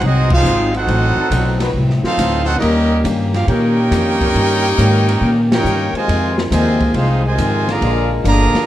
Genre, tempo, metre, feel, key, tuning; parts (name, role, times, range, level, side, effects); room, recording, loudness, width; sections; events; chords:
jazz, big band swing; 138 BPM; 4/4; swing 68% on 8ths; Eb major; A4 = 440 Hz
brilliant trumpet section; melody; 0.0-8.7 s; C4 to Bb5; -19 LUFS; right 1 dB
bright trombone section; second line; 0.0-8.6 s; C3 to G4; -21 LUFS; right 1 dB
picked plugged-in swing-style acoustic guitar; accompaniment; 0.0-8.6 s; F2 to G4; -22 LUFS; left 3 dB
upright bass; bass; 0.0-8.6 s; G1 to Bb2; -16 LUFS; equal
open jazz drum kit; drums; 0.0-8.6 s; crash cymbal, hi-hat, kick drum, ride cymbal, snare drum; -24 LUFS; equal
mellow trombone section; sustained chords; 1.2-8.5 s; F#3 to C5; -26 LUFS; left 4 dB
moderate large studio reverb, RT60 1.2 s; dark, warm production; -13 LUFS; side -13 dB against mid
0.0-8.7 A section
band accent 0.2, 5.4
0.0 Ab7; 0.9 Adim7; 2.6 Eb7; 6.1 Fm7; 7.8 Bb7